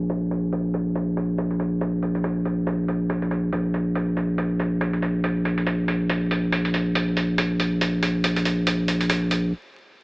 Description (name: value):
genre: deep dubstep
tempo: 140 BPM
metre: 4/4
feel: swing 58% on 16ths, half-time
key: unclear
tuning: A4 = 440 Hz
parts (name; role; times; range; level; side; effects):
- saturated sub bass; bass; 0.0-9.5 s; Bb1; -22 LUFS; equal; none
- electronic hi-hat; drums; 0.1-9.4 s; none; -27 LUFS; right 1 dB; studio reverb
room: digital ambience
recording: vinyl crackle, low-pass filter, small speaker sound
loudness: -21 LUFS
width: side -31 dB against mid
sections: 0.0-10.0 A section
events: filter sweep 0.0-10.0; stop 9.5-10.0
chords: none